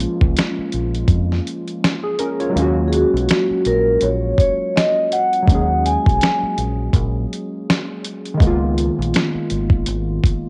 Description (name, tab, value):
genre	lo-fi hip hop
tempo	82 BPM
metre	4/4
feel	swing 57% on 16ths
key	Eb minor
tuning	A4 = 440 Hz
part	warm analog keys	accompaniment	0.0-10.5 s	Eb3 to Db5	-24 LUFS	equal	chorus, cassette tape, low-pass filter
part	deep dub fingered electric bass	bass	0.0-10.2 s	Ab1 to F2	-24 LUFS	equal	none
part	dusty soul sampler-style drum kit	drums	0.0-10.4 s	finger snaps, hi-hat, kick drum, snare drum	-20 LUFS	equal	overdrive, cassette tape
part	vibraphone with soft mallets	melody	2.9-6.5 s	Gb4 to Ab5	-20 LUFS	equal	low-pass filter, cassette tape
room	digital ambience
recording	home recording on cassette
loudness	-18 LUFS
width	mono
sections	0.0-10.5 A section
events	kick muted 2.6-4.0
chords	0.0 Bbm7; 2.6 Ebm7; 8.4 Db13